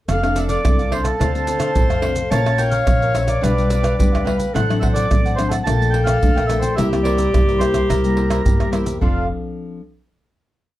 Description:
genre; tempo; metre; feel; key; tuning
samba and choro; 108 BPM; 4/4; straight; F major; A4 = 439 Hz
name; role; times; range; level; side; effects
mellow accordion; melody; 0.1-9.3 s; F4 to A5; -24 LUFS; right 2 dB; none
warm clarinet; second line; 0.1-9.3 s; G4 to Db5; -23 LUFS; left 2 dB; none
cavaquinho; accompaniment; 0.1-9.2 s; D4 to G5; -28 LUFS; right 1 dB; none
nylon-string guitar; accompaniment; 0.1-9.8 s; G2 to C5; -24 LUFS; left 3 dB; none
upright bass; bass; 0.1-9.3 s; F1 to G2; -21 LUFS; equal; none
maracas, surdo, pandeiro and tamborim; percussion; 0.1-9.1 s; none; -20 LUFS; right 1 dB; none
room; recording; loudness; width
light reverb; dark, warm production; -15 LUFS; side -15 dB against mid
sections
0.1-9.0 A section; 9.0-10.8 final chord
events
none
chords
0.1 F6; 1.2 Dm7; 2.3 Bbmadd9; 3.4 G7/B; 4.6 D7/A; 5.7 Gm9/Bb; 6.8 C7; 9.0 F6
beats
| 0.08 0.64 1.20 1.76 | 2.32 2.88 3.43 3.99 | 4.55 5.11 5.67 6.23 | 6.79 7.34 7.90 8.46 | 9.02 9.57

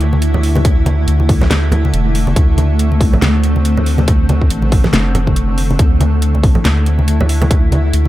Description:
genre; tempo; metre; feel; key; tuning
deep dubstep; 140 BPM; 4/4; swing 57% on 16ths, half-time; D minor; A4 = 440 Hz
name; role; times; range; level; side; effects
granular cloud pad; sustained chords; 0.0-8.1 s; D3 to E4; -18 LUFS; right 1 dB; built-in reverb, vintage 12-bit sampler grit
soft dub sub bass; bass; 0.0-8.1 s; E1 to D2; -14 LUFS; equal; tube saturation
dubstep drum kit; drums; 0.0-8.0 s; hi-hat, snare drum; -21 LUFS; equal; none
congas; percussion; 0.1-8.1 s; none; -19 LUFS; equal; dub echo
electronic kick drum; drums; 0.6-7.6 s; none; -13 LUFS; equal; none
room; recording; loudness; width
digital ambience; echo-heavy mix; -11 LUFS; side -15 dB against mid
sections
0.0-8.1 A section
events
none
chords
0.0 D5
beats
0.22 | 0.65 1.08 1.51 1.94 | 2.36 2.79 3.22 3.65 | 4.08 4.51 4.94 5.36 | 5.79 6.22 6.65 7.08 | 7.51 7.94

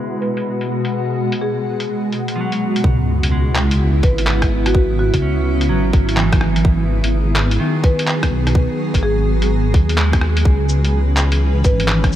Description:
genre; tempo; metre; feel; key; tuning
future garage; 126 BPM; 4/4; swing 65% on 16ths; C# minor; A4 = 440 Hz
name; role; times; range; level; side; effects
clean electric guitar; accompaniment; 0.0-10.7 s; D#3 to C#4; -24 LUFS; right 3 dB; wide subtle chorus, sidechain pumping, analog delay
granular cloud pad; sustained chords; 0.0-12.2 s; B2 to B4; -21 LUFS; equal; built-in reverb, sidechain pumping
wind-like tuned noise texture; texture; 0.0-2.9 s; B4; -37 LUFS; right 2 dB; built-in reverb, lush chorus
marimba with medium mallets; melody; 0.2-12.1 s; F#4 to B4; -25 LUFS; equal; analog delay
lo-fi sampler-style drum kit; drums; 0.2-12.2 s; cabasa, handclaps, hi-hat, rim click; -23 LUFS; equal; none
dark detuned saw bass; bass; 2.8-12.2 s; G#1 to D#2; -17 LUFS; equal; sidechain pumping
electronic kick drum; drums; 2.8-12.1 s; none; -15 LUFS; equal; overdrive
sub drop; sound effects; 2.8-4.7 s; none; -26 LUFS; equal; none
room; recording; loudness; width
light reverb; low-pass filter; -14 LUFS; side -12 dB against mid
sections
0.0-2.8 A section; 2.8-12.2 B section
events
filter sweep 0.0-2.8; impact 2.8-4.7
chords
0.0 G#m7; 2.8 C#m7; 6.6 G#m7; 10.5 C#m7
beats
0.46 | 0.93 1.41 1.89 2.36 | 2.84 3.31 3.79 4.27 | 4.74 5.22 5.70 6.17 | 6.65 7.12 7.60 8.08 | 8.55 9.03 9.50 9.98 | 10.46 10.93 11.41 11.88

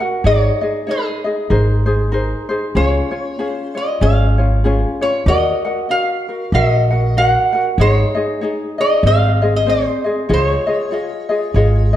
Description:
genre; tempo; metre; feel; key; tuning
Hawaiian; 96 BPM; 4/4; swing 59% on 8ths; Db major; A4 = 440 Hz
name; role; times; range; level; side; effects
lap resonator guitar; melody; 0.0-12.0 s; Ab4 to Gb5; -18 LUFS; equal; none
ukulele; accompaniment; 0.0-12.0 s; C4 to Gb5; -19 LUFS; left 1 dB; none
upright bass; bass; 0.2-12.0 s; Ab1 to Eb2; -15 LUFS; equal; none
room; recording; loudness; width
moderate recital hall reverb, RT60 1.4 s; dark, warm production; -14 LUFS; side -12 dB against mid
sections
0.0-12.0 A section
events
none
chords
0.2 Absus4; 1.5 Abadd9; 2.8 Db; 5.3 Ebm; 7.8 Absus4; 9.0 Ab; 10.3 Dbadd9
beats
| 0.24 0.87 1.50 2.13 | 2.76 3.39 4.02 4.65 | 5.28 5.91 6.54 7.16 | 7.79 8.42 9.05 9.67 | 10.30 10.93 11.55

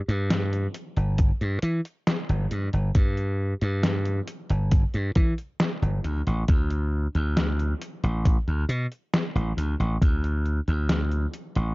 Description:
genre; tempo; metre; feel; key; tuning
vaporwave; 68 BPM; 4/4; straight; unclear; A4 = 442 Hz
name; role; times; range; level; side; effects
slap bass; bass; 0.1-11.7 s; G1 to E3; -24 LUFS; equal; none
detuned 8-bit digital drum machine; drums; 0.1-11.7 s; hi-hat, snare drum; -28 LUFS; equal; studio reverb
electronic kick drum; drums; 1.2-10.2 s; none; -21 LUFS; equal; studio reverb
room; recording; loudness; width
digital ambience; dark, warm production, cassette tape, nothing above 7.5 kHz; -23 LUFS; side -22 dB against mid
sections
0.0-11.7 A section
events
none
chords
none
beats
0.31 1.19 2.07 | 2.96 3.84 4.72 5.60 | 6.48 7.37 8.25 9.13 | 10.01 10.90

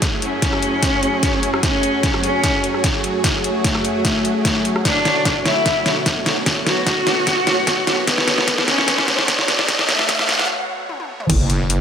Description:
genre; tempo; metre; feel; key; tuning
heavy wobble dubstep; 149 BPM; 4/4; half-time; unclear; A4 = 440 Hz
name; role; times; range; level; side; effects
supersaw chords; sustained chords; 0.0-11.3 s; F#2 to C#5; -27 LUFS; right 1 dB; sidechain pumping
dubstep drum kit; drums; 0.0-11.8 s; crash cymbal, hi-hat, rim click, snare drum, toms; -19 LUFS; equal; none
electronic kick drum; drums; 0.0-11.4 s; none; -24 LUFS; equal; none
granular cloud pad; texture; 0.0-10.5 s; B3 to G#5; -27 LUFS; right 1 dB; built-in reverb, sidechain pumping
rich cello; melody; 0.2-10.5 s; A3 to F#4; -21 LUFS; left 1 dB; tape echo
riser and impact; sound effects; 6.7-11.8 s; none; -26 LUFS; equal; none
wobble bass; bass; 11.3-11.8 s; F#1; -18 LUFS; equal; chorus, overdrive
room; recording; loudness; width
moderate plate reverb, RT60 1.7 s, digital ambience; high-pass filter; -15 LUFS; side -8 dB against mid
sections
0.0-11.3 A section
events
build-up 0.0-11.3; drum fill 0.0-10.5, 10.9-11.3; filter sweep 0.0-11.3; riser 6.7-10.5; break 10.5-11.3; impact 11.3-11.8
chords
0.0 F#m7; 4.9 Bm7; 11.3 N.C.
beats
| 0.02 0.42 0.83 1.23 | 1.63 2.03 2.44 2.84 | 3.24 3.64 4.05 4.45 | 4.85 5.25 5.66 6.06 | 6.46 6.87 7.27 7.67 | 8.07 8.48 8.88 9.28 | 9.69 10.09 10.49 10.89 | 11.29 11.70

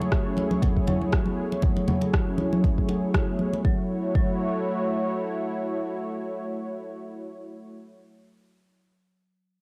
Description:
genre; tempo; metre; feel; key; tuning
afro house; 119 BPM; 4/4; swing 56% on 16ths; F# minor; A4 = 440 Hz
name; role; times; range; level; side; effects
warm analog pad; sustained chords; 0.0-7.8 s; A3 to C#5; -32 LUFS; equal; chorus, vintage 12-bit sampler grit, sidechain pumping, cassette tape
marimba with medium hard mallets; arpeggios; 0.0-4.3 s; F#3 to F#4; -32 LUFS; equal; sidechain pumping, low-pass filter, cassette tape, analog delay
congas; percussion; 0.0-3.6 s; none; -31 LUFS; equal; none
electronic kick drum; drums; 0.1-4.3 s; none; -27 LUFS; equal; cassette tape
electronic rim click; drums; 0.1-3.3 s; none; -35 LUFS; equal; cassette tape
room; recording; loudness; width
light reverb; home recording on cassette; -26 LUFS; mono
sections
0.0-3.6 A section; 3.6-7.7 B section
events
filter sweep on marimba 0.0-3.6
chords
0.0 Amaj7; 3.6 F#m7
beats
0.12 0.62 1.13 | 1.63 2.13 2.64 3.14 | 3.65 4.15 4.66 5.16 | 5.66 6.17 6.67 7.18

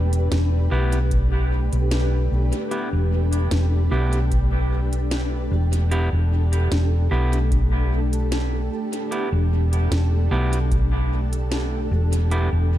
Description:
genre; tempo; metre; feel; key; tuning
ambient dub; 75 BPM; 4/4; straight; E minor; A4 = 440 Hz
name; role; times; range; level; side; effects
granular cloud pad; sustained chords; 0.0-12.8 s; A3 to B4; -28 LUFS; left 1 dB; built-in reverb
hollow-body short-scale fingered electric bass; bass; 0.0-12.8 s; E1 to B1; -20 LUFS; equal; none
organic electronic drum kit; drums; 0.1-12.5 s; hi-hat, snare drum; -32 LUFS; equal; overdrive, dub echo
clean electric guitar; stabs; 0.7-12.5 s; B3 to G4; -30 LUFS; right 2 dB; dub echo
electronic kick drum; drums; 1.1-10.9 s; none; -25 LUFS; equal; none
room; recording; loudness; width
little or no reverb; echo-heavy mix; -19 LUFS; side -13 dB against mid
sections
0.0-12.8 A section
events
none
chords
0.0 Em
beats
0.32 1.12 1.92 | 2.72 3.52 4.32 5.12 | 5.92 6.72 7.52 8.32 | 9.12 9.92 10.72 11.52 | 12.32

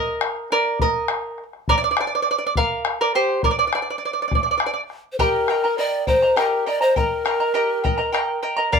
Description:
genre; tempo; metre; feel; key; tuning
andean folk, Andean ensemble; 68 BPM (dotted quarters); 6/8; straight; unclear; A4 = 440 Hz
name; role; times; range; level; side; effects
charango; accompaniment; 0.0-8.8 s; G4 to Bb5; -20 LUFS; right 2 dB; none
bombo; percussion; 0.2-8.8 s; none; -25 LUFS; left 4 dB; none
breathy pan flute; melody; 5.1-8.4 s; Bb4 to D5; -20 LUFS; left 1 dB; none
room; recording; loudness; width
moderate studio reverb, RT60 0.6 s; minimal, uncompressed stereo recording; -18 LUFS; side -6 dB against mid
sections
0.0-5.2 A section; 5.2-8.8 B section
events
charango solo 0.0-5.2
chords
0.0 Eb5; 1.7 Gm7 (rootless); 5.2 Eb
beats
0.79 | 1.67 2.56 | 3.44 4.32 | 5.20 6.08 | 6.96 7.85 | 8.73

